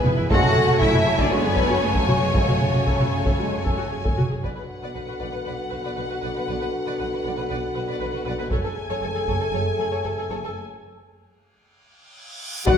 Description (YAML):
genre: cinematic, epic orchestral film score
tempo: 117 BPM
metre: 4/4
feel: straight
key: F# minor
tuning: A4 = 440 Hz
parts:
  - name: warm symphonic violin section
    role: melody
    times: 0.0-12.8 s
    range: G#4 to G#5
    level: -30 LUFS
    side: left 3 dB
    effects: none
  - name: warm symphonic violin section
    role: second line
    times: 0.0-12.8 s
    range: F#4 to G#5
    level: -30 LUFS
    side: left 3 dB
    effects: none
  - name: warm symphonic viola section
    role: accompaniment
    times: 0.0-12.7 s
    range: B3 to D5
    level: -32 LUFS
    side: equal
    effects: none
  - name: rich symphonic string section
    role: sustained chords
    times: 0.0-4.4, 12.7-12.8 s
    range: F#3 to G#5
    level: -28 LUFS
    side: left 1 dB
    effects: none
  - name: warm French horn section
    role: sustained chords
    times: 0.0-12.8 s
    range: B2 to G#4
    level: -27 LUFS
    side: left 2 dB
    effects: none
  - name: warm studio cello section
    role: bass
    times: 0.0-12.7 s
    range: F#2 to F#4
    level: -30 LUFS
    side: right 1 dB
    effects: none
  - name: solo taiko drums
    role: drums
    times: 0.0-5.4, 8.5-9.5, 12.7-12.8 s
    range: none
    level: -23 LUFS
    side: equal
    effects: none
  - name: rich symphonic double bass section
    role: bass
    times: 0.1-12.7 s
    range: E1 to B1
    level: -30 LUFS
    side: right 3 dB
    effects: none
  - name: mellow trombone section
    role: sustained chords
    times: 0.3-3.6, 12.7-12.8 s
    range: C#3 to D4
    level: -33 LUFS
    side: right 2 dB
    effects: none
  - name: reverse cymbal and impact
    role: sound effects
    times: 12.2-12.8 s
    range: none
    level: -30 LUFS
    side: right 1 dB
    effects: none
  - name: warm trumpet section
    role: stabs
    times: 12.7-12.8 s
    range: F#5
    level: -26 LUFS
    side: right 2 dB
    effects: none
  - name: tam-tam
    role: percussion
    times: 12.7-12.8 s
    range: none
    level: -27 LUFS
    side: left 4 dB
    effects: none
room: wet recital hall reverb, RT60 1.7 s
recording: recorded in a church or concert hall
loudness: -20 LUFS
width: side -8 dB against mid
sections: 0.0-4.4 A section; 4.4-12.7 B section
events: break 10.6-12.7; reverse cymbal 12.2-12.7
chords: 0.3 F#madd9; 4.4 Bm; 8.5 F#madd9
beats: | 0.30 0.81 1.31 1.83 | 2.35 2.87 3.40 3.92 | 4.44 4.96 5.46 5.97 | 6.49 6.99 7.50 8.01 | 8.51 9.02 9.53 10.04 | 10.56 11.09 11.62 12.14 | 12.67